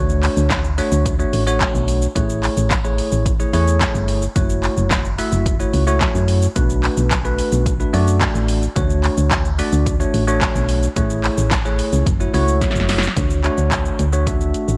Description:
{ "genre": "dance-pop", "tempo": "109 BPM", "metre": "4/4", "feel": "straight", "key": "unclear", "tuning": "A4 = 438 Hz", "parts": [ { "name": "bell-like tine electric piano", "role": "accompaniment", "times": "0.0-14.8 s", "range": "A3 to E5", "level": "-24 LUFS", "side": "equal", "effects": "analog chorus, sidechain pumping" }, { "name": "solid FM bass", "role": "bass", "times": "0.0-14.8 s", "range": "F#1 to F#2", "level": "-21 LUFS", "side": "equal", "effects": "sidechain pumping" }, { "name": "punchy analog drum machine", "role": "drums", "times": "0.1-14.8 s", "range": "handclaps, hi-hat, kick drum, shaker, snare drum", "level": "-23 LUFS", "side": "equal", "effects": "none" } ], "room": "light reverb", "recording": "none", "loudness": "-18 LUFS", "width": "mono", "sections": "0.0-13.2 A section; 13.2-14.8 B section", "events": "drum fill 12.6-13.2", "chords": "0.0 Dmaj7; 2.2 Amaj7; 4.4 F#m7; 6.6 Bm7; 8.8 Dmaj7; 11.0 Amaj7; 12.1 F#m7; 13.2 Dmaj7", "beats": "0.51 1.06 1.61 | 2.16 2.71 3.26 3.81 | 4.36 4.91 5.46 6.01 | 6.56 7.11 7.66 8.21 | 8.76 9.31 9.86 10.41 | 10.96 11.52 12.06 12.62 | 13.17 13.72 14.27" }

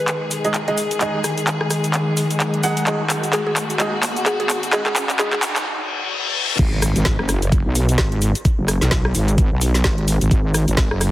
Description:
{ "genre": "bass house", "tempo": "129 BPM", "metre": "4/4", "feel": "swing 58% on 16ths", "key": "G# minor", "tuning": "A4 = 441 Hz", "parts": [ { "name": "mallet-like synth pluck", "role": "melody", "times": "0.0-0.3, 3.3-5.4 s", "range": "G#4 to B4", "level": "-25 LUFS", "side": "equal", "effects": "chorus, tape echo" }, { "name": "warm studio string section", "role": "sustained chords", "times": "0.0-6.6 s", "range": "D#3 to G#4", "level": "-24 LUFS", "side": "left 2 dB", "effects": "sidechain pumping" }, { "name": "riser, reverse cymbal and impact", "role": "sound effects", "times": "2.3-8.4 s", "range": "none", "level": "-28 LUFS", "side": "left 2 dB", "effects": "none" }, { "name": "garage drum kit", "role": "drums", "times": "0.1-11.1 s", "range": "cabasa, crash cymbal, handclaps, hi-hat, rim click, snare drum", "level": "-22 LUFS", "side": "equal", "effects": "none" }, { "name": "clear baby grand piano", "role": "stabs", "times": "0.4-5.3 s", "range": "G#3 to F#5", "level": "-25 LUFS", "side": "right 2 dB", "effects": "sidechain pumping, low-pass filter, tape echo" }, { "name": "wobble bass", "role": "bass", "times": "6.6-11.1 s", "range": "F#1 to B1", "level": "-18 LUFS", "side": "equal", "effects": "chorus, overdrive, sidechain pumping" }, { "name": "electronic kick drum", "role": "drums", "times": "6.6-10.9 s", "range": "none", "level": "-18 LUFS", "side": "equal", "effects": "none" } ], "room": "moderate plate reverb, RT60 2.1 s", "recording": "heavily compressed radio sound, multiband compression, high-pass filter", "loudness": "-17 LUFS", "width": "side -15 dB against mid", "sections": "0.0-6.6 A section; 6.6-11.1 B section", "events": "build-up 0.0-6.6; drum fill 0.0-5.7; filter sweep 0.0-6.6; riser 2.3-5.7; break 5.7-6.6; reverse cymbal 5.7-6.6; drop 6.6-11.1; impact 6.6-8.4", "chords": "0.0 G#5", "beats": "0.08 0.54 | 1.01 1.47 1.94 2.40 | 2.87 3.33 3.80 4.26 | 4.73 5.19 5.66 6.12 | 6.59 7.05 7.52 7.99 | 8.45 8.91 9.38 9.85 | 10.31 10.78" }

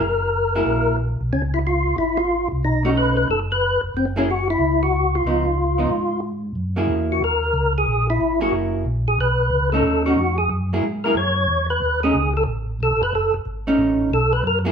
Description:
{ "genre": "soul jazz organ trio", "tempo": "183 BPM", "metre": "4/4", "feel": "swing 64% on 8ths", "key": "F# mixolydian", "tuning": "A4 = 440 Hz", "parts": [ { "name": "percussive tonewheel organ", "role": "melody", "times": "0.0-14.6 s", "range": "B#3 to C#5", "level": "-20 LUFS", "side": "left 1 dB", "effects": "slow rotary speaker, overdrive, chorus vibrato" }, { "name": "mellow tonewheel organ", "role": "bass", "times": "0.0-14.7 s", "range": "F#1 to G#2", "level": "-23 LUFS", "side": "equal", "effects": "chorus vibrato, slow rotary speaker" }, { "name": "vintage hollow-body jazz guitar", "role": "accompaniment", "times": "0.6-14.7 s", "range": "E#3 to G#4", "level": "-22 LUFS", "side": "right 2 dB", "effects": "none" } ], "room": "wet studio reverb, RT60 0.9 s", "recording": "heard from further back in the room", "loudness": "-18 LUFS", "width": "side -7 dB against mid", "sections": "0.0-6.6 A section; 6.6-14.7 B section", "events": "tonewheel organ solo 6.6-14.7", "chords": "0.0 F#9; 1.3 C#; 2.6 B9; 3.9 F#7(no3); 5.2 C#9; 6.6 F#9; 9.2 B9; 10.5 F#9; 11.8 B9", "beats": "| 0.01 0.34 0.67 0.99 | 1.32 1.65 1.98 2.30 | 2.63 2.96 3.28 3.61 | 3.94 4.27 4.59 4.92 | 5.25 5.58 5.91 6.23 | 6.56 6.89 7.22 7.54 | 7.87 8.20 8.53 8.86 | 9.19 9.52 9.84 10.17 | 10.50 10.83 11.16 11.48 | 11.81 12.14 12.47 12.80 | 13.13 13.46 13.78 14.11 | 14.44" }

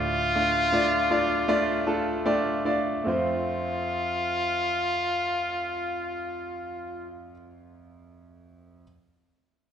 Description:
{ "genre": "pop", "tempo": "74-82 BPM", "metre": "4/4", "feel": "straight", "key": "F major", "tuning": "A4 = 440 Hz", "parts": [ { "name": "brilliant trumpet", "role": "melody", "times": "0.0-7.1 s", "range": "F4", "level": "-27 LUFS", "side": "left 1 dB", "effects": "slapback echo" }, { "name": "bright concert grand piano", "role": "accompaniment", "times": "0.0-8.8 s", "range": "D2 to A5", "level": "-27 LUFS", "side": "equal", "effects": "slapback echo" } ], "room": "light reverb, small room ambience", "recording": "live gig heard through the venue's PA, club reverb", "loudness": "-24 LUFS", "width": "side -8 dB against mid", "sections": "0.0-3.1 A section; 3.1-6.3 B section", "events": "slowing down 0.0-3.1; grand piano fill 1.5-3.1", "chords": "0.0 Dm; 3.1 F", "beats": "0.73 1.49 2.26 | 3.06 3.88 4.69 5.51" }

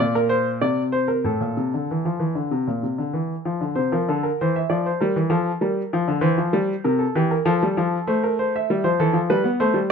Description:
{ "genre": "classical, baroque-style two-part invention for grand piano", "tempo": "97 BPM", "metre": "4/4", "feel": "straight", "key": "F major", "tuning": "A4 = 436 Hz", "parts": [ { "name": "warm baby grand piano", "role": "solo", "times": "0.0-9.9 s", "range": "A2 to E5", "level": "-19 LUFS", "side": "equal", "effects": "none" } ], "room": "light reverb", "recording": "none", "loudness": "-19 LUFS", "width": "side -6 dB against mid", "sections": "0.0-3.8 A section; 3.8-9.9 B section", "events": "none", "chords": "0.0 Bb; 0.6 Bbadd9/C; 1.3 F/A; 3.8 F/C; 5.0 Gm7; 6.2 C/E; 7.5 F; 8.7 C", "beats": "0.01 0.63 | 1.26 1.89 2.52 3.15 | 3.78 4.40 5.02 5.63 | 6.25 6.86 7.47 8.08 | 8.70 9.31" }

